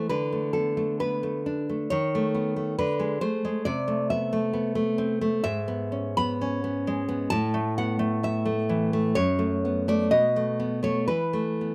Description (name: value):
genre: romantic piece for solo classical guitar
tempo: 59-69 BPM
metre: 2/4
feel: rubato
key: A minor, A major from 5.5 s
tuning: A4 = 440 Hz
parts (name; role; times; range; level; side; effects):
- nylon-string guitar; solo; 0.0-11.7 s; F#2 to B5; -26 LUFS; equal; none
room: little or no reverb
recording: recorded outdoors, with no room sound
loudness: -26 LUFS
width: mono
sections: 0.0-11.7 A section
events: none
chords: 0.1 D5; 1.9 B7/D#; 2.8 G#dim/D; 3.7 Am/C; 5.5 G#madd11; 7.3 A5; 9.2 F#m; 10.1 B7; 11.1 Esus4